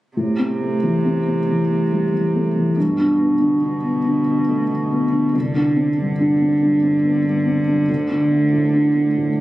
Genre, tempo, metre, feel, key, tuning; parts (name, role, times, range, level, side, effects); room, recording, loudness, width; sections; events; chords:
neoclassical piano and strings; 70 BPM; 3/4; rubato; A minor; A4 = 442 Hz
warm cello; second line; 0.2-9.4 s; B2 to D3; -24 LUFS; right 2 dB
felt-muted upright piano; accompaniment; 0.2-9.4 s; C2 to D4; -17 LUFS; equal
light reverb; recorded on a phone in the room, club reverb, compression; -16 LUFS; side -16 dB against mid
0.2-9.4 A section
0.2 Am; 2.8 Gadd9; 5.3 Csus2; 7.9 D5